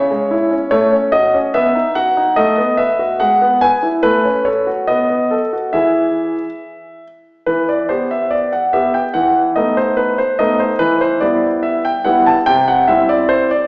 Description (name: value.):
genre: classical-period piano sonatina.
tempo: 72 BPM.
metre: 2/4.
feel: straight.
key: E major, E minor from 7.5 s.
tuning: A4 = 441 Hz.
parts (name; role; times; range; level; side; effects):
clear grand piano; solo; 0.0-13.7 s; C3 to A5; -12 LUFS; equal; none.
room: wet recital hall reverb, RT60 1.5 s.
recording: recorded in a church or concert hall, small speaker sound.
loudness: -12 LUFS.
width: side -26 dB against mid.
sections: 0.0-7.5 A section; 7.5-13.7 B section.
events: none.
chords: 0.0 C#m; 0.7 F#m/A; 1.5 B; 2.4 B7/A; 3.2 E/G#; 4.0 F#m/A; 4.9 B7; 5.7 E; 7.5 Em; 9.1 B7/E; 10.8 Em; 12.5 C.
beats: | 0.72 1.54 | 2.37 3.20 | 4.03 4.88 | 5.74 6.61 | 7.47 8.30 | 9.14 9.97 | 10.80 11.63 | 12.46 13.29.